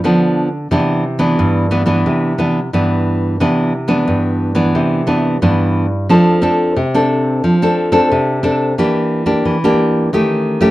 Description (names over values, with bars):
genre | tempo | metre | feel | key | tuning
samba | 89 BPM | 4/4 | straight | C major, F major from 6.1 s | A4 = 441 Hz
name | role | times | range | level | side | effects
nylon-string guitar | solo | 0.0-10.7 s | G2 to A4 | -12 LUFS | equal | slapback echo
room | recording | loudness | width
moderate booth ambience, RT60 0.2 s | dry, close 1970s-style studio recording | -12 LUFS | side -16 dB against mid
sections
0.0-6.1 A section; 6.1-10.7 B section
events
none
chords
0.0 G7 (rootless); 0.7 Cmaj9; 6.1 F6; 8.8 Em7b5; 10.1 Eb7#11